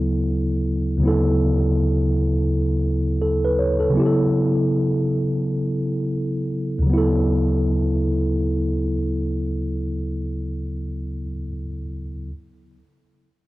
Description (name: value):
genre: hip hop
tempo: free time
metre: none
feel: none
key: D major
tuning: A4 = 438 Hz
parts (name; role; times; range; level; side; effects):
- mellow tine electric piano; solo; 0.0-12.3 s; D2 to C#5; -19 LUFS; equal; medium stereo tremolo, low-pass filter, cassette tape
room: light reverb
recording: home recording on cassette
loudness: -19 LUFS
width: side -18 dB against mid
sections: 0.0-1.0 A section; 1.0-6.9 B section; 6.9-9.8 C section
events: none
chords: 0.0 Dmaj9; 3.9 B9sus4; 6.9 Dmaj9